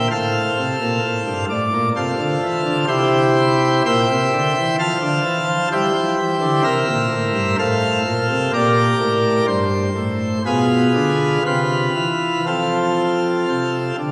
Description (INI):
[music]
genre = classical, chorale-style piece for pipe organ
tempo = 64 BPM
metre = 3/4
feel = uneven beats, rubato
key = F major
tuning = A4 = 440 Hz
[part]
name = pipe organ, plenum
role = solo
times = 0.0-14.1 s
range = G2 to A5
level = -18 LUFS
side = equal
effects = none
[sound]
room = wet church reverb, RT60 2.8 s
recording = heard from further back in the room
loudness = -18 LUFS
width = mono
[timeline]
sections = 0.0-14.1 A section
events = none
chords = 0.1 F; 2.9 C7; 4.8 F; 5.7 C7; 7.6 F/A; 8.5 Gm; 10.5 Bdim7; 11.4 F/C; 13.5 F6/C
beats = | 0.11 1.03 1.94 | 2.87 3.84 4.78 | 5.70 6.64 7.59 | 8.54 9.48 10.45 | 11.45 12.47 13.49